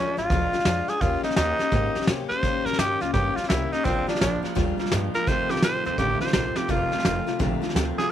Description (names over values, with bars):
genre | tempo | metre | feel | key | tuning
rockabilly | 169 BPM | 4/4 | swing 64% on 8ths | unclear | A4 = 440 Hz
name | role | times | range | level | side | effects
growling tenor saxophone | melody | 0.0-8.1 s | C4 to C5 | -25 LUFS | right 1 dB | none
picked steel-string acoustic guitar | accompaniment | 0.0-8.1 s | F2 to G4 | -29 LUFS | left 11 dB | none
upright bass | bass | 0.0-8.0 s | F1 to C3 | -30 LUFS | right 1 dB | none
vintage brush drum kit | drums | 0.2-8.0 s | hi-hat, kick drum, snare drum | -27 LUFS | equal | none
electric guitar through a small old amp | riff | 3.9-8.1 s | F2 to G3 | -31 LUFS | right 14 dB | none
room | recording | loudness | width
light reverb, small room ambience | 1960s-style stereo with parts hard left and right | -21 LUFS | side -10 dB against mid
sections
0.0-8.1 A section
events
drum fill 6.5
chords
0.0 Bb7; 1.0 Eb7; 3.9 Bb7; 5.3 F7